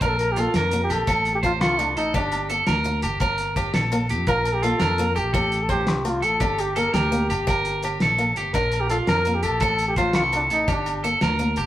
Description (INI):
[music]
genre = highlife guitar band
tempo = 112 BPM (dotted quarters)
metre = 12/8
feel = straight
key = unclear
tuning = A4 = 442 Hz
[part]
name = picked steel-string acoustic guitar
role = accompaniment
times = 0.0-11.7 s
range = A3 to F4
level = -31 LUFS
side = left 2 dB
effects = none
[part]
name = electric guitar at the edge of break-up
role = arpeggios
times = 0.0-11.7 s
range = F4 to C5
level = -24 LUFS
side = right 2 dB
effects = none
[part]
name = fingered electric bass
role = bass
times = 0.0-11.7 s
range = G1 to F2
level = -27 LUFS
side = equal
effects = none
[part]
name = cloth-damped thuddy drum kit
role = drums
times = 0.0-11.6 s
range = hi-hat, kick drum, snare drum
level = -27 LUFS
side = equal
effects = none
[part]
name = agogo bells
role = percussion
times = 0.0-11.7 s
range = none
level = -32 LUFS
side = right 1 dB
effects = none
[part]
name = trumpet with bucket mute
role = melody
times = 0.1-11.1 s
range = D4 to Bb4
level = -25 LUFS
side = left 1 dB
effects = none
[sound]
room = moderate stone room reverb, RT60 1.2 s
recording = band playing live in one room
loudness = -19 LUFS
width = side -13 dB against mid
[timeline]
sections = 0.0-11.7 A section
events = none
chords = 0.0 Bb; 1.1 Am; 2.1 Gm; 3.2 Gm11; 4.3 Bb5; 5.3 Am7; 6.4 Gm; 7.5 Gmadd11; 8.5 Bb; 9.6 Am; 10.7 Gm